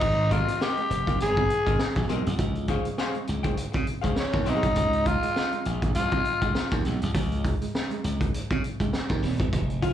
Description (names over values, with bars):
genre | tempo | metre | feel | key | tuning
funk | 101 BPM | 4/4 | swing 56% on 16ths | unclear | A4 = 442 Hz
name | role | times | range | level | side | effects
growling tenor saxophone | melody | 0.0-6.8 s | Db4 to Ab4 | -26 LUFS | left 1 dB | plate reverb, slapback echo
electric guitar at the edge of break-up | riff | 0.0-9.9 s | F3 to Db4 | -36 LUFS | right 11 dB | slapback echo
glassy slap bass | bass | 0.0-9.9 s | Eb1 to Db3 | -27 LUFS | equal | none
raw garage drum kit | drums | 0.0-9.9 s | crash cymbal, hi-hat, kick drum, snare drum | -28 LUFS | equal | none
archtop guitar, miked and amplified | accompaniment | 0.3-4.7, 9.8-9.9 s | C4 to G5 | -32 LUFS | left 6 dB | plate reverb, slapback echo
room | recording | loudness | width
light reverb | live gig heard through the venue's PA, club reverb | -23 LUFS | side -10 dB against mid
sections
0.0-9.5 A section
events
none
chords
0.0 Abmaj9; 2.4 Dbmaj7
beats
| 0.02 0.61 1.20 1.80 | 2.39 2.99 3.58 4.18 | 4.77 5.37 5.96 6.55 | 7.15 7.74 8.34 8.93 | 9.53